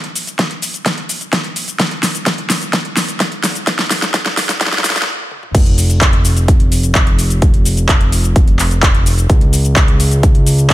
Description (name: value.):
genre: EDM, festival progressive house.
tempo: 128 BPM.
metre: 4/4.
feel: straight.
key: unclear.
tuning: A4 = 438 Hz.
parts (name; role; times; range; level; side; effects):
big-room dance drum kit; drums; 0.0-10.7 s; crash cymbal, handclaps, hi-hat, shaker, snare drum, toms; -16 LUFS; equal; overdrive.
electronic kick drum; drums; 0.4-10.7 s; none; -12 LUFS; equal; high-pass filter on kick.
fat analog bass; bass; 5.5-10.7 s; F1 to Db2; -14 LUFS; equal; sidechain pumping.
room: digital ambience.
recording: high-pass filter.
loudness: -11 LUFS.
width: side -15 dB against mid.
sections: 0.0-5.5 A section; 5.5-10.7 B section.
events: build-up 0.0-5.5; drum fill 0.0-5.1, 5.3; stop 5.1-5.5; drop 5.5-10.7.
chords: none.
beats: 0.39 0.86 1.33 | 1.80 2.27 2.73 3.20 | 3.67 4.14 4.61 5.08 | 5.55 6.01 6.48 6.95 | 7.42 7.89 8.36 8.83 | 9.30 9.77 10.23 10.70.